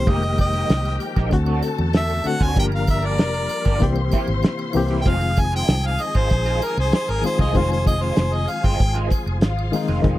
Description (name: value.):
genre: lush 1970s-style soul.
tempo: 96 BPM.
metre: 4/4.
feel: straight.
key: F minor.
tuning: A4 = 441 Hz.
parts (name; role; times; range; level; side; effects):
clear harmonica; melody; 0.0-9.0 s; Bb4 to Ab5; -24 LUFS; equal; none.
warm studio string section; second line; 0.0-10.2 s; C4 to C6; -30 LUFS; left 6 dB; none.
barky reed electric piano; accompaniment; 0.0-10.2 s; D3 to G4; -26 LUFS; left 4 dB; overdrive, fast tremolo.
bright tonewheel organ; sustained chords; 0.0-10.2 s; C3 to Bb4; -34 LUFS; right 1 dB; fast rotary speaker, chorus vibrato.
vintage muted fingered electric bass; bass; 0.0-10.2 s; F1 to E2; -22 LUFS; equal; none.
electric guitar through a small old amp; riff; 0.1-10.2 s; Eb3 to G4; -30 LUFS; right 6 dB; wah.
cloth-damped thuddy drum kit; drums; 0.1-10.2 s; hi-hat, kick drum, snare drum; -19 LUFS; equal; none.
triangle; percussion; 0.1-10.0 s; none; -40 LUFS; right 8 dB; none.
room: little or no reverb.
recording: dry, close 1970s-style studio recording.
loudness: -18 LUFS.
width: side -15 dB against mid.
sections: 0.0-10.0 A section.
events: harmonica solo 0.0-10.0.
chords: 0.1 Fm11; 1.3 D7; 2.6 Gm7; 3.8 C7; 5.1 Fm7.